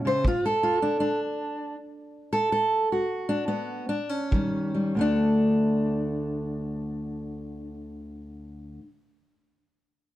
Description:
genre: acoustic country blues, solo or duo.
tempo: 93-108 BPM.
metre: 4/4.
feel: swing 66% on 8ths.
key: D major.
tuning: A4 = 440 Hz.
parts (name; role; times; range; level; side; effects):
fingerpicked steel-string acoustic guitar; melody; 0.0-8.8 s; D2 to C5; -25 LUFS; equal; plate reverb.
kick drum; drums; 0.2-0.4, 4.3-4.5 s; none; -26 LUFS; equal; none.
room: moderate small room reverb, RT60 0.6 s.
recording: dark, warm production.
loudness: -24 LUFS.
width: side -14 dB against mid.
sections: 0.0-5.0 A section; 5.0-7.5 B section.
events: slowing down 0.2-5.0; stop 0.2-4.3.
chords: 0.2 N.C.; 4.3 Eb7; 5.0 D5.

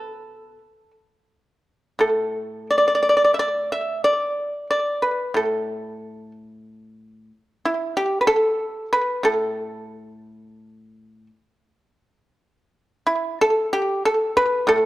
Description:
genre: chinese traditional, Chinese solo plucked strings.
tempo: 80-95 BPM.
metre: 4/4.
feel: rubato.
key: A shang mode.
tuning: A4 = 440 Hz.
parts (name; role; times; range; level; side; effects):
pipa; solo; 0.0-14.9 s; A2 to E5; -19 LUFS; equal; slapback echo.
room: moderate recital hall reverb, RT60 1.5 s.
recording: dark, warm production.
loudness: -19 LUFS.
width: side -16 dB against mid.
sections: 0.0-12.0 A section; 12.0-14.9 B section.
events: none.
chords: none.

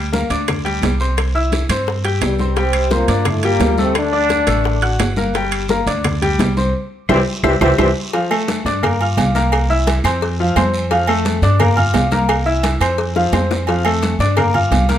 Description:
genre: latin, salsa.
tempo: 173 BPM.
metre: 4/4.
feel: straight.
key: F major.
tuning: A4 = 439 Hz.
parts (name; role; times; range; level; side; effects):
bright grand piano; accompaniment; 0.0-15.0 s; F3 to G6; -19 LUFS; left 2 dB; none.
upright bass; bass; 0.0-15.0 s; G1 to G2; -19 LUFS; equal; none.
bongos and cowbell; percussion; 0.1-15.0 s; none; -25 LUFS; left 6 dB; none.
congas; percussion; 0.1-15.0 s; none; -24 LUFS; equal; none.
guiro; percussion; 0.1-15.0 s; none; -31 LUFS; right 2 dB; none.
timbales and agogo bells; percussion; 0.1-14.9 s; none; -23 LUFS; right 7 dB; none.
claves; percussion; 0.5-14.5 s; none; -27 LUFS; left 4 dB; none.
mellow trombone section; melody; 2.2-5.0, 7.1-7.9 s; G2 to D4; -18 LUFS; left 1 dB; none.
room: moderate studio reverb, RT60 0.9 s.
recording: none.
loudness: -14 LUFS.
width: side -10 dB against mid.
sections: 0.0-8.1 A section; 8.1-15.0 B section.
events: band accent 6.7-8.1; drum fill 7.3-8.1, 13.2-13.7.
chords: 0.0 Gm/D; 1.2 C; 2.6 Csus2; 4.0 D; 5.3 Gm; 6.7 C; 8.1 F6; 8.8 Gm7; 9.5 C7; 10.2 F6; 11.6 Gm7; 12.3 C7; 13.0 F6; 14.4 Gm7.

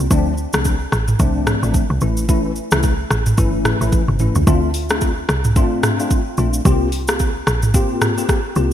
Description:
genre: afrobeats.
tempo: 110 BPM.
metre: 4/4.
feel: swing 58% on 16ths.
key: D minor.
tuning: A4 = 440 Hz.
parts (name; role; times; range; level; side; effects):
tine electric piano; accompaniment; 0.0-8.7 s; E3 to G4; -21 LUFS; left 3 dB; ensemble chorus.
woody log drum bass; bass; 0.0-8.7 s; G1 to D2; -20 LUFS; equal; none.
afro-pop drum kit; drums; 0.1-8.7 s; hi-hat, kick drum, rim click, shaker, toms; -18 LUFS; equal; gated reverb.
room: light reverb, digital ambience.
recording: bright 1980s-style digital production.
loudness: -15 LUFS.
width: side -10 dB against mid.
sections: 0.0-4.5 A section; 4.5-8.7 B section.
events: drum fill 3.9-4.5.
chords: 0.1 Dm7; 2.0 A; 4.5 Dm7; 6.7 C7sus4.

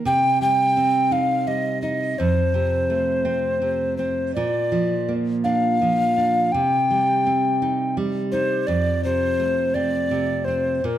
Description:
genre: children's music, lullaby.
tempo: 56 BPM (dotted quarters).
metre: 6/8.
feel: rubato.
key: unclear.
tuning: A4 = 443 Hz.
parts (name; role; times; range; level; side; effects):
nylon-string guitar; accompaniment; 0.0-11.0 s; F2 to Eb4; -23 LUFS; right 2 dB; none.
mellow hollow alto recorder; melody; 0.1-11.0 s; Bb4 to G5; -21 LUFS; left 1 dB; none.
room: moderate recital hall reverb, RT60 1.4 s.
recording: dark, warm production.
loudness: -19 LUFS.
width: side -12 dB against mid.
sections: 0.0-11.0 A section.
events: none.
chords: 0.1 Cm; 2.2 F; 4.4 Bb; 6.5 Cm; 8.7 F.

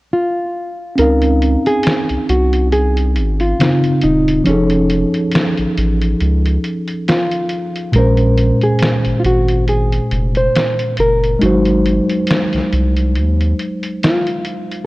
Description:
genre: lo-fi hip hop.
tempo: 69 BPM.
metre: 4/4.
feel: swing 56% on 16ths.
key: Db major.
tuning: A4 = 439 Hz.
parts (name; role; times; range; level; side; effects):
nylon-string guitar; melody; 0.1-14.9 s; C#4 to C5; -18 LUFS; equal; low-pass filter.
mellow tine electric piano; accompaniment; 1.0-14.9 s; Bb2 to F5; -16 LUFS; equal; medium stereo tremolo, cassette tape, low-pass filter.
soft dub sub bass; bass; 1.0-13.5 s; Eb1 to Eb2; -16 LUFS; equal; none.
lo-fi sampler-style drum kit; drums; 1.0-14.9 s; finger snaps, hi-hat, snare drum; -20 LUFS; equal; none.
room: light reverb.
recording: worn, warbling old tape, cassette tape, warbly pitch drift.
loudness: -13 LUFS.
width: side -20 dB against mid.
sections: 1.0-14.9 A section.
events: kick muted 1.0-14.9.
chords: 0.0 N.C.; 1.0 Dbmaj9; 4.5 F7alt; 7.9 Bbm9; 11.4 Ab7.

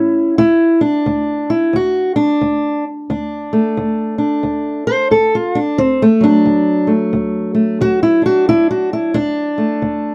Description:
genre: acoustic country blues, solo or duo.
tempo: 89 BPM.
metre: 4/4.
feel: swing 62% on 8ths.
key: D major.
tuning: A4 = 440 Hz.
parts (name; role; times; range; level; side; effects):
fingerpicked steel-string acoustic guitar; solo; 0.0-10.1 s; D2 to C5; -15 LUFS; equal; none.
room: light reverb.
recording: dry, close 1970s-style studio recording.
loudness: -15 LUFS.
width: mono.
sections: 0.4-10.1 A section.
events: steel-string acoustic guitar solo 0.4-10.1.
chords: 0.4 D.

